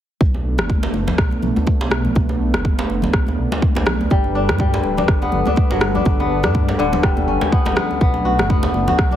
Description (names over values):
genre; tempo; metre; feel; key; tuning
afro house; 123 BPM; 4/4; swing 57% on 16ths; B minor; A4 = 440 Hz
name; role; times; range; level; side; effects
warm analog pad; sustained chords; 0.2-9.2 s; G3 to B4; -24 LUFS; equal; chorus, sidechain pumping
dark detuned saw bass; bass; 0.2-9.2 s; D1 to G2; -23 LUFS; equal; sidechain pumping
electronic kick drum; drums; 0.2-9.1 s; none; -17 LUFS; equal; none
congas; percussion; 0.2-9.2 s; none; -27 LUFS; left 5 dB; none
djembe; percussion; 0.3-9.2 s; none; -26 LUFS; right 2 dB; none
electronic rim click; drums; 0.6-9.1 s; none; -23 LUFS; equal; none
kora; arpeggios; 4.1-9.2 s; D3 to F#4; -20 LUFS; left 2 dB; sidechain pumping, digital delay
room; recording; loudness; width
light reverb, small room ambience; heavily compressed radio sound; -15 LUFS; side -11 dB against mid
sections
0.2-9.2 A section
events
none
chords
0.2 Bm7; 4.1 G; 8.0 Bm7